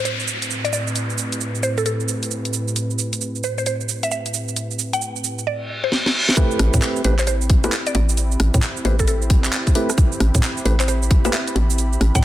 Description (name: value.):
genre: UK garage, two-step garage.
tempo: 133 BPM.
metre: 4/4.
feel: swing 64% on 16ths.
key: A minor.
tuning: A4 = 440 Hz.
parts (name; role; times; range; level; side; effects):
mallet-like synth pluck; melody; 0.0-12.2 s; A4 to G5; -26 LUFS; left 1 dB; chorus, tape echo.
warm analog pad; sustained chords; 0.0-12.2 s; A2 to B5; -27 LUFS; equal; chorus, sidechain pumping.
downlifter and reverse cymbal; sound effects; 0.0-2.8, 5.7-6.4 s; none; -26 LUFS; equal; none.
garage drum kit; drums; 0.1-12.2 s; bongos, cabasa, handclaps, hi-hat, rim click, snare drum; -24 LUFS; right 2 dB; soft clipping on snare.
percussive organ stab; stabs; 6.4-11.3 s; A3 to B4; -26 LUFS; right 1 dB; chorus, vintage 12-bit sampler grit, tape echo.
electronic kick drum; drums; 6.4-12.2 s; none; -17 LUFS; equal; none.
hollow knocking FM bass; bass; 6.6-12.2 s; A1 to A2; -18 LUFS; equal; none.
room: digital ambience.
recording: dense, heavily limited modern master.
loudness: -17 LUFS.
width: side -14 dB against mid.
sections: 0.0-6.4 A section; 6.4-12.2 B section.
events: reverse cymbal 5.7-6.4; drum fill 5.9-6.4; drop 6.4-12.2.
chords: 0.0 Am7; 6.1 N.C.; 6.4 Am7.